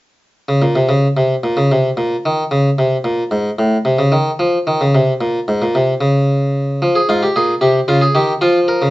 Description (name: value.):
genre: classical, baroque-style 3-part fugue for harpsichord.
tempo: 74 BPM (dotted quarters).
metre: 12/8.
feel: straight.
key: unclear.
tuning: A4 = 440 Hz.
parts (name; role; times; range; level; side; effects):
harpsichord; solo; 0.5-8.9 s; Ab2 to Bb4; -13 LUFS; equal; none.
room: moderate stone room reverb, RT60 0.9 s.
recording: nothing above 7.7 kHz.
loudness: -13 LUFS.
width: side -17 dB against mid.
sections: 0.4-8.9 A section.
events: none.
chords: 0.4 N.C.; 6.8 Fm.